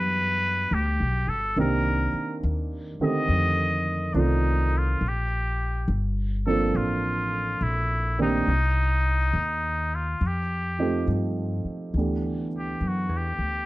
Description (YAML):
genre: jazz ballad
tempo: 70 BPM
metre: 4/4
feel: swing 66% on 8ths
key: unclear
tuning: A4 = 440 Hz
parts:
  - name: trumpet with straight mute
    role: melody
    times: 0.0-13.7 s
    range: D4 to Eb5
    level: -27 LUFS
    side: left 1 dB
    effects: slapback echo
  - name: warm baby grand piano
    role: accompaniment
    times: 0.0-13.7 s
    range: D3 to D5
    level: -28 LUFS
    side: right 2 dB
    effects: none
  - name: upright bass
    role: bass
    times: 0.0-13.7 s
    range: G1 to G2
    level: -26 LUFS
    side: left 1 dB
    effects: none
room: little or no reverb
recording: dry, close 1970s-style studio recording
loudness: -23 LUFS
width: side -18 dB against mid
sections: 0.0-11.9 A section; 11.9-13.7 B section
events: muted trumpet solo 11.9-13.7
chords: 0.0 Em9; 1.6 Cm7; 3.3 F13; 5.0 Bbmaj9; 8.5 Cm; 10.2 F9; 11.9 G69